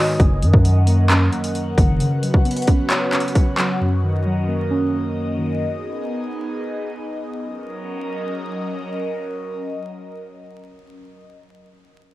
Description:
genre	hip hop, trap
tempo	133 BPM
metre	4/4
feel	half-time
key	F# major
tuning	A4 = 440 Hz
part	muted felt-like synth keys	accompaniment	0.0-5.6 s	F#2 to C#5	-21 LUFS	equal	chorus, phaser, low-pass filter
part	airy breathy pad	sustained chords	0.0-11.2 s	F#3 to D#6	-27 LUFS	equal	chorus, phaser
part	long sustained 808-style bass	bass	0.2-2.0 s	F#1 to F#2	-15 LUFS	equal	none
part	trap drum kit	drums	0.2-3.7 s	handclaps, hi-hat, kick drum	-18 LUFS	equal	overdrive
room	digital ambience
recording	home recording on cassette, vinyl crackle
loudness	-18 LUFS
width	side -17 dB against mid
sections	0.2-7.4 A section; 7.4-11.0 B section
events	break 0.0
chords	0.2 F#6; 2.0 Bsus2; 3.8 F#6; 5.6 G#m; 7.4 F#6

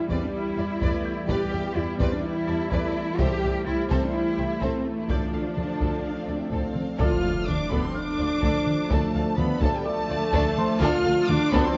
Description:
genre	cinematic, hybrid orchestral and electronic film score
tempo	126 BPM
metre	4/4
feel	straight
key	D dorian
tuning	A4 = 445 Hz
part	clear symphonic viola section	accompaniment	0.0-11.8 s	F3 to F4	-34 LUFS	equal	none
part	mellow French horn section	sustained chords	0.0-11.8 s	F3 to F4	-33 LUFS	equal	none
part	warbly tape-like pad	sustained chords	0.0-11.8 s	E3 to D5	-37 LUFS	equal	chorus, built-in reverb
part	dark symphonic cello section	bass	0.0-11.6 s	D2 to G4	-33 LUFS	equal	none
part	dark concert grand piano	texture	0.0-11.8 s	E4 to A6	-41 LUFS	equal	none
part	warm symphonic violin section	melody	0.1-11.8 s	D5 to F6	-37 LUFS	equal	none
part	dark symphonic violin section	second line	0.1-11.7 s	D4 to F5	-35 LUFS	equal	none
part	rich symphonic double bass section	bass	0.1-11.6 s	C2 to E2	-33 LUFS	equal	none
part	taiko ensemble	drums	0.1-11.8 s	none	-32 LUFS	equal	none
part	swell and impact	sound effects	6.2-8.9 s	none	-38 LUFS	equal	none
part	mellow trombone section	sustained chords	7.0-11.8 s	F3 to D4	-37 LUFS	equal	none
room	moderate concert hall reverb, RT60 2.3 s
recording	worn, warbling old tape, cassette tape, warbly pitch drift, nothing above 7.8 kHz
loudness	-25 LUFS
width	mono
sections	0.0-7.0 A section; 7.0-11.8 A section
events	swell 6.2-7.0; impact 7.0-8.9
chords	0.0 Em7; 3.2 C6; 5.1 Dm

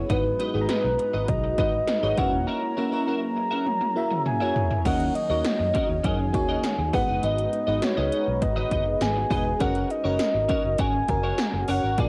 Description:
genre	1980s-style pop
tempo	101 BPM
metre	4/4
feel	straight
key	G# minor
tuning	A4 = 442 Hz
part	FM electric piano with soft pad layer	accompaniment	0.0-12.1 s	G#2 to A#5	-32 LUFS	equal	chorus, phaser, cassette tape
part	shimmering ambient pad	sustained chords	0.0-12.1 s	F#3 to A#5	-40 LUFS	equal	none
part	vintage muted fingered electric bass	bass	0.0-12.1 s	E1 to F#2	-32 LUFS	equal	none
part	soft octave-layered synth lead	melody	0.1-12.1 s	B4 to A#5	-29 LUFS	equal	chorus, phaser, cassette tape, tape echo
part	twelve-string electric guitar	riff	0.1-12.1 s	A#3 to E5	-34 LUFS	equal	analog chorus, cassette tape
part	80s electronic pad drums	drums	0.1-12.1 s	crash cymbal, hi-hat, kick drum, snare drum, tambourine, toms	-31 LUFS	equal	gated reverb on snare and toms, overdrive, cassette tape
room	light reverb, digital ambience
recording	home recording on cassette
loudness	-25 LUFS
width	mono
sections	0.0-4.9 A section; 4.9-12.1 B section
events	drum fill 3.7-4.9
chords	0.1 G#m7; 2.2 F#7; 4.9 D#m7; 6.9 G#m7; 9.6 F#

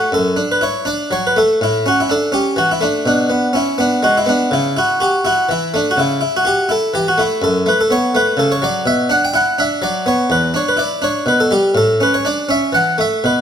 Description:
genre	classical, baroque-style suite movement for harpsichord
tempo	82 BPM (dotted quarters)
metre	12/8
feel	rubato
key	unclear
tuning	A4 = 440 Hz
part	harpsichord	solo	0.0-13.4 s	E2 to G5	-13 LUFS	equal	none
room	light reverb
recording	close, detailed microphones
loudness	-13 LUFS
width	side -8 dB against mid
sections	0.0-13.4 A section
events	none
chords	0.0 D/F#; 1.6 A; 3.0 G#dim/B; 4.5 A/C#; 7.4 F#m; 8.9 Bm; 10.3 Em7; 11.8 A

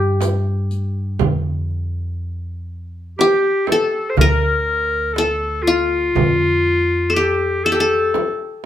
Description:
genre	Turkish makam ensemble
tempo	121 BPM (eighths)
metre	10/8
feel	straight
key	F makam rast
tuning	A4 = 440 Hz
part	qanun	melody	0.0-8.7 s	F4 to Bb4	-18 LUFS	left 1 dB	none
part	upright bass	bass	0.0-8.1 s	D2 to G2	-22 LUFS	equal	none
part	darbuka	percussion	0.2-8.4 s	none	-23 LUFS	right 2 dB	none
part	frame drum	percussion	0.2-8.4 s	none	-23 LUFS	right 6 dB	none
part	riq	percussion	0.2-0.8 s	none	-34 LUFS	left 4 dB	none
part	bright clarinet	second line	3.2-8.6 s	F4 to C5	-19 LUFS	left 2 dB	none
room	moderate large studio reverb, RT60 0.8 s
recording	band playing live in one room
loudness	-16 LUFS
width	side -11 dB against mid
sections	0.0-1.2 A section; 1.2-8.7 B section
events	none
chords	none

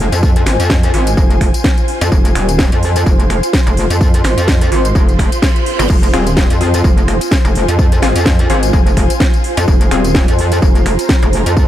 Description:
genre	bass house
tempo	127 BPM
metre	4/4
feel	swing 56% on 16ths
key	F minor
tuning	A4 = 440 Hz
part	metallic wobble bass	bass	0.0-11.7 s	Eb1 to F2	-14 LUFS	equal	chorus, sidechain pumping
part	ethereal airy pad	texture	0.0-11.7 s	F4 to C6	-19 LUFS	equal	ensemble chorus, built-in reverb, sidechain pumping
part	house drum kit	drums	0.1-11.7 s	crash cymbal, finger snaps, hi-hat, snare drum, tambourine	-20 LUFS	equal	none
part	electronic kick drum	drums	0.2-11.7 s	none	-12 LUFS	equal	overdrive
part	reverse cymbal	sound effects	5.1-5.9 s	none	-29 LUFS	right 4 dB	none
part	orchestra-hit-like synth stab	stabs	6.1-10.1 s	C4 to Ab4	-22 LUFS	left 3 dB	built-in reverb, sidechain pumping, ping-pong delay
room	light reverb, digital ambience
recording	none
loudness	-10 LUFS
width	side -12 dB against mid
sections	0.0-11.7 A section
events	reverse cymbal 5.1-5.9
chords	0.0 Fm

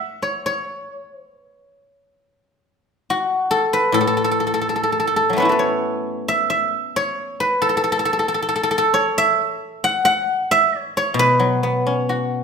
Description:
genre	chinese traditional, Chinese solo plucked strings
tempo	67 BPM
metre	2/4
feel	rubato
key	A gong mode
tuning	A4 = 440 Hz
part	guzheng	solo	0.0-12.4 s	A2 to F#5	-17 LUFS	equal	none
room	moderate recital hall reverb, RT60 1.4 s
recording	minimal, uncompressed stereo recording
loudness	-17 LUFS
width	side -6 dB against mid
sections	0.0-5.8 A section; 5.8-12.4 B section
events	none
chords	none

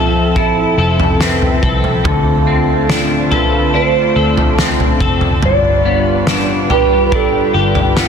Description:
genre	dream pop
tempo	71 BPM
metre	4/4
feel	straight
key	unclear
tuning	A4 = 435 Hz
part	mellow electric guitar	melody	0.0-8.1 s	F4 to D5	-17 LUFS	right 4 dB	phaser, ping-pong delay
part	warm analog pad	sustained chords	0.0-8.1 s	D3 to E5	-18 LUFS	equal	chorus
part	electric guitar at the edge of break-up	arpeggios	0.0-8.1 s	G2 to A4	-17 LUFS	left 5 dB	ensemble chorus, ping-pong delay
part	vintage muted picked electric bass	bass	0.0-8.1 s	F1 to D2	-19 LUFS	equal	none
part	loose indie drum kit	drums	0.4-8.1 s	kick drum, snare drum, toms	-17 LUFS	equal	none
room	moderate shimmer reverb, RT60 5.1 s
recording	dense, heavily limited modern master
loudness	-11 LUFS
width	side -6 dB against mid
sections	0.0-8.1 A section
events	none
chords	0.0 Fmaj7; 2.0 Dm7; 5.4 G7

